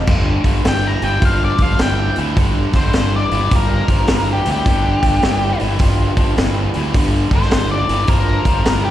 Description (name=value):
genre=blues rock power trio and southern rock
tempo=105 BPM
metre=4/4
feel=swing 64% on 8ths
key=G minor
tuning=A4 = 441 Hz
part: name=overdriven tonewheel organ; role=sustained chords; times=0.0-8.9 s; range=D4 to D5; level=-35 LUFS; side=right 4 dB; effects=none
part: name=overdriven electric guitar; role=riff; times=0.0-8.9 s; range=G2 to F3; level=-21 LUFS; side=equal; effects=slapback echo
part: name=fuzz fingered electric bass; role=bass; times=0.0-8.9 s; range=G1 to D2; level=-19 LUFS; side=equal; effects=overdrive
part: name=vintage drum kit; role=drums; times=0.1-8.8 s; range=crash cymbal, hi-hat, kick drum, snare drum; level=-18 LUFS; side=equal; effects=none
part: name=octave-fuzz lead guitar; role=melody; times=0.7-8.9 s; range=G4 to Bb5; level=-21 LUFS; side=left 2 dB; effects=distortion, slapback echo, tape echo
room=small room ambience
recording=live gig heard through the venue's PA, recital hall reverb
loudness=-13 LUFS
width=side -12 dB against mid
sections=0.1-8.9 A section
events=lead electric guitar solo 0.1-8.9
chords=0.1 Gm7